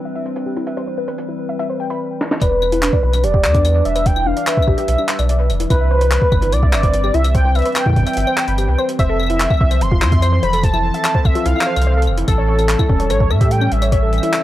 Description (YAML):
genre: IDM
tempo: 146 BPM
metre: 4/4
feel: straight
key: E phrygian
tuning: A4 = 439 Hz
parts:
  - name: warbly tape-like pad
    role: sustained chords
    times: 0.0-14.4 s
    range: E3 to B4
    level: -25 LUFS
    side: right 1 dB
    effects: chorus, built-in reverb, sidechain pumping
  - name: warbly dusty pluck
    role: arpeggios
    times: 0.1-14.4 s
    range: C#4 to B5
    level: -23 LUFS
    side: left 3 dB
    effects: chorus, analog delay
  - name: jungle sampler-style drum kit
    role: drums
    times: 0.3-14.4 s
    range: claves, handclaps, hi-hat, snare drum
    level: -23 LUFS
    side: equal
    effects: low-pass filter on hats, low-pass filter on perc, low-pass filter on snare, low-pass filter on room
  - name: warm velvety synth lead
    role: melody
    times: 2.4-14.4 s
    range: A4 to C6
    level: -20 LUFS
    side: equal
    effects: chorus
  - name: warm sub bass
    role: bass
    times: 2.4-14.2 s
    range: E1 to A2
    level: -17 LUFS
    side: equal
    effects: tube saturation
  - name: electronic kick drum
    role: drums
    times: 2.4-14.0 s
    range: none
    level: -16 LUFS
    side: equal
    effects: overdrive
room: little or no reverb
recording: dry, gritty hardware recording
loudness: -14 LUFS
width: side -14 dB against mid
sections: 0.0-2.4 A section; 2.4-14.4 B section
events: filter sweep on synth pluck 0.0-2.4; drum fill 2.2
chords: 0.0 Cmaj7; 2.4 Em7; 5.7 Cmaj7; 9.0 Fmaj7; 12.3 A7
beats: 0.36 | 0.77 1.18 1.59 2.00 | 2.42 2.83 3.24 3.65 | 4.06 4.47 4.88 5.29 | 5.70 6.11 6.53 6.94 | 7.35 7.76 8.17 8.58 | 8.99 9.40 9.81 10.22 | 10.63 11.04 11.46 11.87 | 12.28 12.69 13.10 13.51 | 13.92 14.33